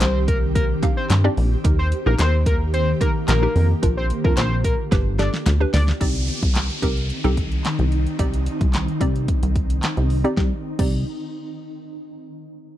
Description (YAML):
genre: dance-pop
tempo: 110 BPM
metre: 4/4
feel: straight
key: C minor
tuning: A4 = 439 Hz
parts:
  - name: fat analog lead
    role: melody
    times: 0.0-5.8 s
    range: Bb4 to D5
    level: -26 LUFS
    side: left 1 dB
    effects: chorus, sidechain pumping, tape echo
  - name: hollow square pluck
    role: accompaniment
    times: 0.0-11.0 s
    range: C4 to F5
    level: -26 LUFS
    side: right 1 dB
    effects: chorus, sidechain pumping, low-pass filter
  - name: ethereal airy pad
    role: sustained chords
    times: 0.1-10.6 s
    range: D3 to G4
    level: -28 LUFS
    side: equal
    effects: ensemble chorus, built-in reverb, sidechain pumping, low-pass filter
  - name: plucky analog bass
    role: bass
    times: 0.0-11.0 s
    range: G1 to G2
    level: -20 LUFS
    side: equal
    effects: sidechain pumping
  - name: pop drum kit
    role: drums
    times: 0.0-10.9 s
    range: crash cymbal, handclaps, hi-hat, kick drum, snare drum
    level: -22 LUFS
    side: equal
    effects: none
  - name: group handclap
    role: percussion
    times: 0.0-5.6 s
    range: none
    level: -33 LUFS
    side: left 6 dB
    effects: none
  - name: downlifter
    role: sound effects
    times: 6.0-10.4 s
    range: none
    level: -33 LUFS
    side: equal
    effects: none
room: digital ambience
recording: dry, close 1970s-style studio recording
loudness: -18 LUFS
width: side -13 dB against mid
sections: 0.0-6.0 A section; 6.0-10.4 B section; 10.4-12.6 C section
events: drop 0.0-6.0; drum fill 4.9-6.0; filter sweep 6.0-10.4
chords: 0.0 Cmadd9; 1.6 Eb; 3.8 Bb; 4.9 G; 6.0 Cmadd9